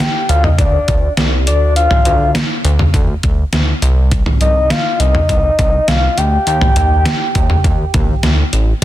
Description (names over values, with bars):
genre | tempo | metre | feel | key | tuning
synth-pop | 102 BPM | 4/4 | straight | C dorian | A4 = 437 Hz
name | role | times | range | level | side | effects
soft octave-layered synth lead | melody | 0.0-8.2 s | D5 to G5 | -16 LUFS | left 2 dB | chorus, tremolo, ping-pong delay
detuned 8-bit digital drum machine | drums | 0.0-8.8 s | crash cymbal, hi-hat, kick drum, snare drum, toms | -15 LUFS | equal | overdrive
chorused synth bass | bass | 0.3-8.8 s | A1 to Eb2 | -14 LUFS | equal | none
room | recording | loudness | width
light reverb | dense, heavily limited modern master | -11 LUFS | side -14 dB against mid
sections
0.0-8.8 A section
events
none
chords
0.0 Csus2; 1.5 Dm; 3.8 Cm; 6.5 Eb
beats
0.00 0.59 1.17 | 1.76 2.35 2.94 3.53 | 4.12 4.70 5.29 5.88 | 6.47 7.06 7.64 8.23 | 8.82